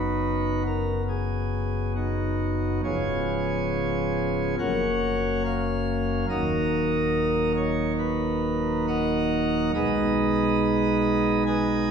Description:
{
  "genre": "classical, chorale-style piece for pipe organ",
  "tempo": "70 BPM",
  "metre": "4/4",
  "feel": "rubato",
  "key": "unclear",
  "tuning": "A4 = 440 Hz",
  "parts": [
    { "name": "pipe organ, sparkling flutes", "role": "solo", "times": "0.0-11.9 s", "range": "C#1 to G#5", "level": "-22 LUFS", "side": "equal", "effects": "none" }
  ],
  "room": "wet recital hall reverb, RT60 1.8 s",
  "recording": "heard from further back in the room",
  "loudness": "-22 LUFS",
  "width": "side -7 dB against mid",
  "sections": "0.0-11.9 A section",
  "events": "none",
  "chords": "0.0 B/F#; 2.8 C#7; 4.6 F#; 6.3 D#m; 9.7 G#m/B"
}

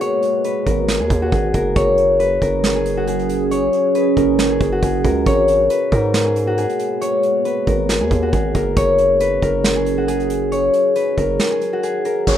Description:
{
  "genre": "hip hop, trap",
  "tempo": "137 BPM",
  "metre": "4/4",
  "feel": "half-time",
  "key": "unclear",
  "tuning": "A4 = 440 Hz",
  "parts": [
    { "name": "concert harp", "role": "melody", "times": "0.0-12.4 s", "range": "F#4 to C#5", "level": "-17 LUFS", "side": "left 2 dB", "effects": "low-pass filter" },
    { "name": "deep dark ambient pad", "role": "sustained chords", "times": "0.0-12.3 s", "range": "F#3 to G#4", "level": "-24 LUFS", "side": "right 4 dB", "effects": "chorus, built-in reverb" },
    { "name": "soft brush drum kit", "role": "drums", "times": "0.0-12.4 s", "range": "hi-hat, kick drum, snare drum", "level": "-22 LUFS", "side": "right 2 dB", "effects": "none" },
    { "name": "distorted 808-style bass", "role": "bass", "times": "0.7-12.4 s", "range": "F#1 to G#2", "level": "-22 LUFS", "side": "right 1 dB", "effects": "distortion" },
    { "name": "downlifter", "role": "sound effects", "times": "12.3-12.4 s", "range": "none", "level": "-20 LUFS", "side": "equal", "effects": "none" }
  ],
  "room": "light reverb, studio reverb",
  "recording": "rough home demo mix",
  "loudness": "-15 LUFS",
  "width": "side -10 dB against mid",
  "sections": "0.0-12.3 A section",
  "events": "break 11.4-12.3",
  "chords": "0.0 G#madd9; 1.8 F#sus2; 5.3 G#madd9; 8.8 F#sus2"
}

